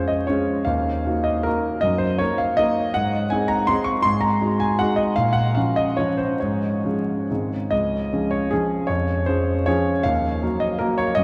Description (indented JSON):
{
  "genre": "classical, romantic triple-time dance for piano with dotted rhythms",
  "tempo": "128-173 BPM",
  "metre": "3/4",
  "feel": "rubato",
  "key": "Db major",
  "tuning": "A4 = 440 Hz",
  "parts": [
    { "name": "warm concert grand piano", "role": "solo", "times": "0.0-11.2 s", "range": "Db2 to Db6", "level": "-22 LUFS", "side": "equal", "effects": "none" }
  ],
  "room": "wet cathedral reverb, RT60 6.7 s",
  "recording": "in a vast, echoing space, vinyl crackle",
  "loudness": "-22 LUFS",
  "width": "mono",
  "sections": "0.0-7.7 A section; 7.7-11.2 A section",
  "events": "none",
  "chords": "0.0 Db; 0.7 Ebm; 1.8 Ebm/Gb; 2.9 Ab; 4.0 Ab5; 5.2 Bbm; 6.4 Db/Ab; 7.3 Ab; 7.7 Db; 8.9 Db/F; 10.0 Ebm"
}